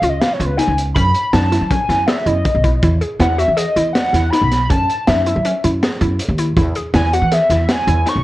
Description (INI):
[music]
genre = progressive instrumental, band music in an uneven meter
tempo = 160 BPM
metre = 5/4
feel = straight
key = E major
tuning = A4 = 440 Hz
[part]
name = hollow square lead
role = melody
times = 0.0-8.2 s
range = B4 to C#6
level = -18 LUFS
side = equal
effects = chorus, plate reverb
[part]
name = hollow square pluck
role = arpeggios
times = 0.0-8.2 s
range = C#4 to G#4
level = -22 LUFS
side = equal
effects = chorus
[part]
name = upright bass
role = bass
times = 0.0-8.2 s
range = B1 to F#3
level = -17 LUFS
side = equal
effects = none
[part]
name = crunchy breakbeat drum kit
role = drums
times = 0.0-8.2 s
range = hi-hat, kick drum, snare drum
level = -20 LUFS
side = equal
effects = none
[sound]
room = moderate studio reverb, RT60 0.8 s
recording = worn, warbling old tape, cassette tape, warbly pitch drift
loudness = -13 LUFS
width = side -16 dB against mid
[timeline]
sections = 0.0-8.2 A section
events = analog synth lead solo 0.0-8.2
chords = 0.0 C#; 1.0 F#m9; 2.8 Emaj9; 4.7 F#m7; 6.6 E